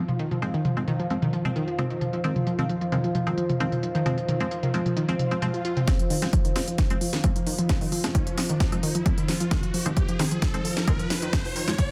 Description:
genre	driving peak-time techno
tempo	132 BPM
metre	4/4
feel	straight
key	F minor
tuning	A4 = 440 Hz
part	unison pluck	riff	0.0-11.8 s	Eb3 to F4	-31 LUFS	equal	sidechain pumping, delay
part	wavetable chord stab	stabs	0.0-11.7 s	F3 to C4	-35 LUFS	equal	sidechain pumping, dub echo
part	deep dark ambient pad	drone	0.3-11.9 s	F3	-39 LUFS	equal	none
part	warbly tape-like pad	texture	0.0-11.9 s	F4 to F5	-36 LUFS	equal	chorus, built-in reverb, sidechain pumping
part	techno drum kit	drums	0.1-11.9 s	hi-hat, snare drum, toms	-32 LUFS	equal	overdrive, high-pass filter on hats, low-pass filter on hats, small room reverb, high-pass filter on toms, low-pass filter on toms, high-pass filter on snare, low-pass filter on snare
part	swell and riser	sound effects	5.2-11.9 s	none	-40 LUFS	equal	none
part	electronic kick drum	drums	5.9-11.9 s	none	-27 LUFS	equal	small room reverb
room	light reverb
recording	dense, heavily limited modern master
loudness	-25 LUFS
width	mono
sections	0.0-5.9 A section; 5.9-11.9 B section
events	filter sweep on synth stab 0.0-5.9; swell 5.2-5.9; build-up 5.9-11.9; drum fill 5.9-11.9; riser 5.9-11.9; filter sweep on synth arpeggio sound 5.9-11.9; filter sweep 5.9-11.9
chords	0.0 Fm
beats	| 0.42 0.88 1.33 1.78 | 2.24 2.69 3.15 3.60 | 4.06 4.51 4.97 5.42 | 5.88 6.33 6.79 7.24 | 7.69 8.15 8.60 9.06 | 9.51 9.97 10.42 10.88 | 11.33 11.79

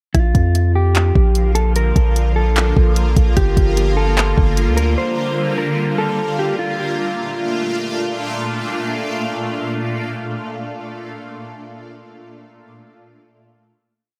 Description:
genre	hip hop, atmospheric cloud-rap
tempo	149 BPM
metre	4/4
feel	half-time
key	Bb major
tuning	A4 = 438 Hz
part	mellow electric guitar	melody	0.1-7.8 s	F4 to C5	-24 LUFS	equal	analog delay
part	shimmering ambient pad	sustained chords	0.9-10.3 s	Bb2 to F4	-25 LUFS	equal	chorus, built-in reverb, phaser, sidechain pumping
part	long sustained 808-style bass	bass	0.1-5.0 s	G1 to F2	-18 LUFS	equal	none
part	smooth R&B drum kit	drums	0.1-4.9 s	handclaps, hi-hat, kick drum	-19 LUFS	equal	none
room	little or no reverb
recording	echo-heavy mix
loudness	-18 LUFS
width	mono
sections	0.1-6.6 verse; 6.6-9.8 final chord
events	none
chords	0.1 Bbmaj7; 3.4 Gm7; 6.6 Bbmaj7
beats	| 0.14 0.55 0.95 1.35 | 1.76 2.16 2.56 2.96 | 3.37 3.77 4.17 4.58 | 4.98 5.38 5.78 6.19 | 6.59 6.99 7.39 7.80 | 8.20 8.60 9.01 9.41

